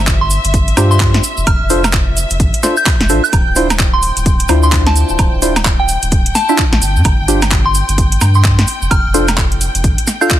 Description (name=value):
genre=UK garage, two-step garage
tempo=129 BPM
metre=4/4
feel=swing 61% on 16ths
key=D minor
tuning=A4 = 440 Hz
part: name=clear symphonic violin section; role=sustained chords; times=0.0-10.4 s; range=E5 to G5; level=-25 LUFS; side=left 2 dB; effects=sidechain pumping
part: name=saturated sub bass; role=bass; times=0.0-9.9 s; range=D1 to G2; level=-14 LUFS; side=equal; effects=none
part: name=electronic kick drum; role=drums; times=0.1-10.4 s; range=none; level=-15 LUFS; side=equal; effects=studio ambience
part: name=garage drum kit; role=drums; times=0.1-10.4 s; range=handclaps, hi-hat, snare drum, woodblock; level=-17 LUFS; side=right 1 dB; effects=studio ambience, soft clipping on snare
part: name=cabasa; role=percussion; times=0.1-10.4 s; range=none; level=-23 LUFS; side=right 4 dB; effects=none
part: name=soft synth bell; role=melody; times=0.2-10.4 s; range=G5 to G6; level=-19 LUFS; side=right 1 dB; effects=chorus, ping-pong delay
part: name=percussive organ stab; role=stabs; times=0.8-10.4 s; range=D4 to F5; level=-18 LUFS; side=equal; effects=chorus
room=little or no reverb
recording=dense, heavily limited modern master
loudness=-10 LUFS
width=side -12 dB against mid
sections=0.0-10.4 A section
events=none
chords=0.0 G7sus4; 1.2 F6; 3.3 Dm9; 6.8 G7sus4; 8.7 F6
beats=0.07 0.54 1.00 | 1.47 1.93 2.40 2.86 | 3.33 3.79 4.26 4.72 | 5.19 5.65 6.12 6.58 | 7.05 7.51 7.98 8.44 | 8.91 9.38 9.84 10.30